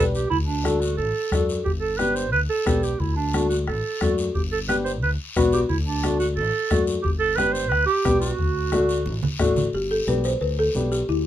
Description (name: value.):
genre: latin, cumbia.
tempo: 178 BPM.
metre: 4/4.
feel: straight.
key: G major.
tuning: A4 = 438 Hz.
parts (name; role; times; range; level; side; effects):
warm clarinet; second line; 0.0-9.4 s; D4 to C5; -24 LUFS; right 4 dB; none.
dark upright piano; accompaniment; 0.0-11.0 s; A3 to B4; -24 LUFS; left 3 dB; none.
fingered electric bass; bass; 0.0-11.3 s; G1 to F#2; -27 LUFS; equal; none.
guiro; percussion; 0.1-11.3 s; none; -36 LUFS; left 4 dB; none.
bombo; percussion; 0.3-9.6 s; none; -27 LUFS; left 2 dB; none.
congas; percussion; 0.3-11.3 s; none; -32 LUFS; equal; none.
folk marimba with medium hard mallets; melody; 9.7-11.3 s; E4 to C5; -23 LUFS; left 2 dB; none.
room: moderate booth ambience, RT60 0.2 s.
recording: minimal, uncompressed stereo recording.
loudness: -20 LUFS.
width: side -11 dB against mid.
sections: 0.0-9.7 A section; 9.7-11.3 B section.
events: clarinet solo 0.0-9.7; drum fill 9.1-9.7.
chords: 0.3 D; 1.7 G; 3.0 D; 4.4 G; 5.7 D; 7.0 G; 8.4 D; 9.7 G.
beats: | 0.31 0.65 0.99 1.32 | 1.66 2.00 2.33 2.67 | 3.01 3.34 3.68 4.02 | 4.35 4.69 5.03 5.36 | 5.70 6.03 6.37 6.71 | 7.04 7.38 7.72 8.05 | 8.39 8.73 9.06 9.40 | 9.74 10.07 10.41 10.75 | 11.08.